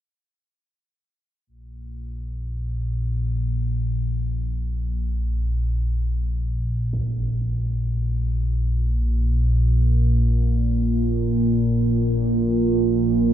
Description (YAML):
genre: dark ambient drone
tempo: free time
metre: none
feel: none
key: unclear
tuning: A4 = 440 Hz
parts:
  - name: analog drone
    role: drone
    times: 1.7-13.3 s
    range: Bb1 to Bb2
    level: -20 LUFS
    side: equal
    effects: chorus, phaser
  - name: impact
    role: percussion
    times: 6.9-7.1 s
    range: none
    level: -38 LUFS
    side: right 1 dB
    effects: low-pass filter on sfx
room: wet huge ambient reverb, RT60 8.2 s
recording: dark, warm production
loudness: -20 LUFS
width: side -11 dB against mid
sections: 1.5-13.3 A section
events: fade-in on impacts and reversed cymbals 1.5-13.3; filter sweep on synth drone 1.5-13.3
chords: none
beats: free time